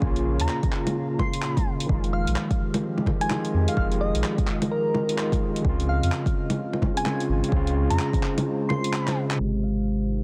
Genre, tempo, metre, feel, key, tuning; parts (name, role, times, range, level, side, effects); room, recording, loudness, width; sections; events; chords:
future garage; 128 BPM; 4/4; swing 62% on 16ths; F minor; A4 = 440 Hz
overdriven tine electric piano; accompaniment; 0.0-10.2 s; C3 to G4; -30 LUFS; equal; sidechain pumping, low-pass filter, tape echo
warbly tape-like pad; sustained chords; 0.0-10.2 s; Bb2 to F5; -35 LUFS; equal; chorus, built-in reverb, sidechain pumping
warm sub bass; bass; 0.0-10.2 s; F1 to F2; -27 LUFS; equal; sidechain pumping
electronic kick drum; drums; 0.0-8.2 s; -28 LUFS; equal; vintage 12-bit sampler grit
deep house drum kit; drums; 0.2-9.4 s; bongos, handclaps, hi-hat; -32 LUFS; equal; low-pass filter on hats, vintage 12-bit sampler grit, low-pass filter on snare, low-pass filter on perc, low-pass filter on room
soft struck synth lead; melody; 0.4-9.9 s; Bb4 to C6; -34 LUFS; equal; chorus, tape echo
light reverb, digital ambience; dense, heavily limited modern master, low-pass filter; -25 LUFS; mono
0.0-9.4 A section
filter sweep on tine electric piano 0.0-9.4; drum fill 9.0-9.4; band accent 9.3
0.0 Bbm; 1.9 Fm7; 5.6 Dbmaj7; 9.4 Abmaj7